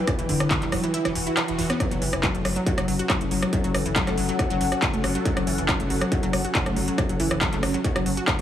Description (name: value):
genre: driving peak-time techno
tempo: 139 BPM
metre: 4/4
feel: straight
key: F# phrygian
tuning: A4 = 440 Hz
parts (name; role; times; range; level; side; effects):
- wide unison pluck; riff; 0.0-8.4 s; D3 to F#4; -26 LUFS; equal; tube saturation, sidechain pumping, tape echo
- ethereal airy pad; texture; 0.0-8.4 s; C#4 to G5; -30 LUFS; left 1 dB; ensemble chorus, built-in reverb, phaser, sidechain pumping
- electronic kick drum; drums; 0.1-8.4 s; none; -27 LUFS; equal; distortion
- techno drum kit; drums; 0.1-8.4 s; handclaps, hi-hat, rim click; -27 LUFS; equal; overdrive
- saturated sub bass; bass; 0.2-8.4 s; E1 to F#1; -32 LUFS; equal; overdrive, sidechain pumping, low-pass filter
- swell; sound effects; 1.1-1.8 s; none; -35 LUFS; right 2 dB; none
room: moderate lush hall reverb, RT60 2.4 s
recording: heavily compressed radio sound, multiband compression, small room ambience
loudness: -21 LUFS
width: side -10 dB against mid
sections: 0.0-8.4 A section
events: kick drops out 0.9-1.8; swell 1.1-1.8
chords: 0.0 Em; 1.8 F#m